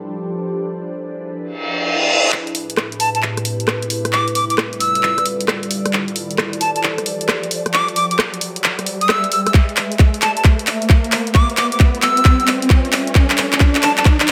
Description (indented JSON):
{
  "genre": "UK garage, two-step garage",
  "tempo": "133 BPM",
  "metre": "4/4",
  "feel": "swing 66% on 16ths",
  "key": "A minor",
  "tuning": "A4 = 441 Hz",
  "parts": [
    { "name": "ethereal airy pad", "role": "sustained chords", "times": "0.0-14.3 s", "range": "A2 to E5", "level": "-27 LUFS", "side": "equal", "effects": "ensemble chorus, built-in reverb, phaser, sidechain pumping" },
    { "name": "reverse cymbal and riser", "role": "sound effects", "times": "1.6-14.3 s", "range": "none", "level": "-24 LUFS", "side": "equal", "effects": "none" },
    { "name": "garage drum kit", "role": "drums", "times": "2.3-14.3 s", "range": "handclaps, hi-hat, rim click", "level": "-21 LUFS", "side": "equal", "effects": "none" },
    { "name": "breathy bright jazz flute", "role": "melody", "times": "3.0-14.0 s", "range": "A5 to E6", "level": "-21 LUFS", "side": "equal", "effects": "none" },
    { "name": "electronic kick drum", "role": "drums", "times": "9.5-14.2 s", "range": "none", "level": "-13 LUFS", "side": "equal", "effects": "none" }
  ],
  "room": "light reverb, digital ambience",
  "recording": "none",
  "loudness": "-17 LUFS",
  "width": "mono",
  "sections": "0.0-2.3 A section; 2.3-14.3 B section",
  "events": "filter sweep on ambient pad 0.0-2.3; reverse cymbal 1.6-2.3; build-up 2.3-14.3; drum fill 2.3-14.3; riser 2.3-14.3",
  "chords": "0.0 F69; 0.5 E7; 2.3 Am9; 3.9 G13; 5.9 F69; 7.7 E7; 9.5 Am9; 11.1 G13; 13.2 F69"
}